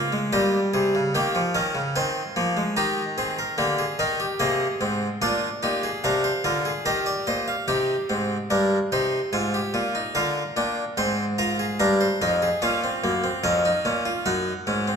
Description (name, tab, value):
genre	classical, baroque-style 4-part fugue for harpsichord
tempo	73 BPM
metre	3/4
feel	straight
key	unclear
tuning	A4 = 440 Hz
part	harpsichord	solo	0.0-15.0 s	F2 to Bb5	-21 LUFS	equal	none
room	wet recital hall reverb, RT60 1.8 s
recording	none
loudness	-21 LUFS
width	side -6 dB against mid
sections	0.0-7.7 A section; 7.7-15.0 B section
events	none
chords	0.3 Eb/Bb; 1.9 Ab/Eb; 2.8 Eb; 4.4 Ab/C; 5.2 Bb; 6.9 Eb; 7.7 Cm; 9.3 Fm/Ab; 10.2 Bb; 11.8 Eb/G; 12.6 Bbm; 14.3 Ebm/Gb